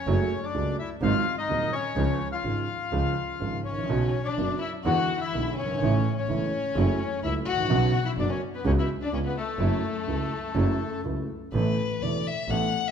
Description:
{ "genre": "tango", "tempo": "126 BPM", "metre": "4/4", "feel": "rubato", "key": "F# minor", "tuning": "A4 = 440 Hz", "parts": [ { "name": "bandoneon", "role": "melody", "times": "0.0-11.0 s", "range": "A3 to F#5", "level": "-31 LUFS", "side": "left 5 dB", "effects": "none" }, { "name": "warm baby grand piano", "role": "accompaniment", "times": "0.1-12.7 s", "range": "D#1 to A4", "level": "-27 LUFS", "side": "right 2 dB", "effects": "none" }, { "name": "clear double bass", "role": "bass", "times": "0.1-12.7 s", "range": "E1 to E2", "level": "-30 LUFS", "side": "right 1 dB", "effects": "none" }, { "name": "warm violin", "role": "second line", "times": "3.6-12.9 s", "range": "A3 to F#5", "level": "-32 LUFS", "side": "left 6 dB", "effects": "none" } ], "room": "wet recital hall reverb, RT60 1.7 s", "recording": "minimal, uncompressed stereo recording", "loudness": "-24 LUFS", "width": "side -7 dB against mid", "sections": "0.0-11.5 A section; 11.5-12.9 B section", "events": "violin solo 11.5-12.9", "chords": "0.1 F#madd9; 1.0 G#7; 2.0 C#; 3.9 Bsus2; 4.8 E7; 5.8 A; 6.8 F#m7; 7.7 Bsus2; 8.7 C#7sus4; 9.1 C#7; 9.6 F#m7; 11.5 Asus2" }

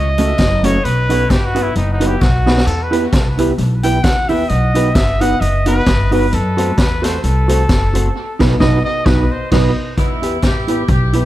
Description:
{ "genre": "ska", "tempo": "131 BPM", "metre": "4/4", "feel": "swing 55% on 8ths", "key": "E harmonic minor", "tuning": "A4 = 438 Hz", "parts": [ { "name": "warm trumpet", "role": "melody", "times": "0.0-9.9 s", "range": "D#4 to G5", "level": "-20 LUFS", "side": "equal", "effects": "tape echo" }, { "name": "upright bass", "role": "bass", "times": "0.0-11.3 s", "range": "F#1 to F#2", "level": "-17 LUFS", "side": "equal", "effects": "none" }, { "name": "mellow electric guitar", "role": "accompaniment", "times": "0.2-11.3 s", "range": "A3 to C5", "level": "-21 LUFS", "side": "right 3 dB", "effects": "tremolo" }, { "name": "dark upright piano", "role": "stabs", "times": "0.2-11.3 s", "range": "A3 to B4", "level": "-22 LUFS", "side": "equal", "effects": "tape echo" }, { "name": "street-band drum kit", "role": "drums", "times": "0.2-11.2 s", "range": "crash cymbal, hi-hat, kick drum, snare drum, splash cymbal", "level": "-17 LUFS", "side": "equal", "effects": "tape echo" }, { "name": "group handclap", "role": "percussion", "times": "0.4-10.6 s", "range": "none", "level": "-36 LUFS", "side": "left 1 dB", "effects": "none" }, { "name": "clear horn section", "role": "melody", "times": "10.0-11.3 s", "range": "E4 to G4", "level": "-23 LUFS", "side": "equal", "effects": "tape echo" } ], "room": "light reverb", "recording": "none", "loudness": "-12 LUFS", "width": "side -14 dB against mid", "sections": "0.0-10.0 A section; 10.0-11.3 B section", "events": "trumpet solo 0.0-10.0; drum fill 2.2-2.7; band accent 8.2-10.0", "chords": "0.0 F#m; 0.8 B; 2.7 Em; 4.5 B; 6.3 F#dim; 8.2 B; 10.0 Em" }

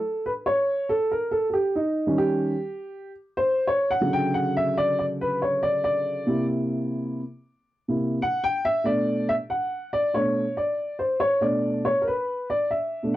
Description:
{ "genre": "hip hop", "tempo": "93 BPM", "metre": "4/4", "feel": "swing 61% on 16ths", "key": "B minor", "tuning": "A4 = 439 Hz", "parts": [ { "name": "dark upright piano", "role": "solo", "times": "0.0-13.2 s", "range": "B2 to G5", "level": "-22 LUFS", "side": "equal", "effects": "none" } ], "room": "moderate studio reverb, RT60 0.6 s", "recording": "dark, warm production", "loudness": "-22 LUFS", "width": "side -14 dB against mid", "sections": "0.0-13.2 A section", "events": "upright piano solo 0.0-13.2", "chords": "0.0 F#m (rootless); 1.1 D#7; 3.7 Dmaj7; 6.3 C7; 8.8 Bm7" }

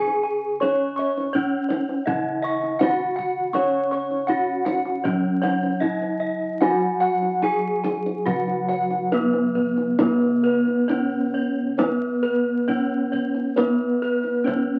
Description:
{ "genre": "Javanese gamelan", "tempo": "67-82 BPM", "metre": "4/4", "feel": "straight", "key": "C# slendro", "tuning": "A4 = 439 Hz", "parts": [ { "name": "gamelan-type bronze metallophone", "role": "melody", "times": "0.0-14.8 s", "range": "B3-25c to C#5", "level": "-27 LUFS", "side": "equal", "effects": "none" }, { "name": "gamelan-type bronze metallophone", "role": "accompaniment", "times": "0.0-14.8 s", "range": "C#3 to C#4", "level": "-30 LUFS", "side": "equal", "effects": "none" }, { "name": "gamelan-type bossed gongs", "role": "arpeggios", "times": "0.0-14.8 s", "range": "B4-25c to C#6", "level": "-31 LUFS", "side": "equal", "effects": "none" }, { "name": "gamelan-type bronze metallophone", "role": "arpeggios", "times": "0.0-14.8 s", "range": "B4-25c to C#6", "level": "-30 LUFS", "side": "equal", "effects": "none" }, { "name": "gamelan-type bossed gongs", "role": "bass", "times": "0.0-14.8 s", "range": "C#2 to C#5", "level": "-30 LUFS", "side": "equal", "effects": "none" }, { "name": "kendang", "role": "percussion", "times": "0.1-14.7 s", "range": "none", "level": "-29 LUFS", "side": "equal", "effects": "none" } ], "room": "wet studio reverb, RT60 0.6 s", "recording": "very old 78 rpm record, vinyl crackle, nothing above 10.5 kHz", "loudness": "-22 LUFS", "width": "mono", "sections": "0.0-10.0 A section; 10.0-14.8 B section", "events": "none", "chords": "none" }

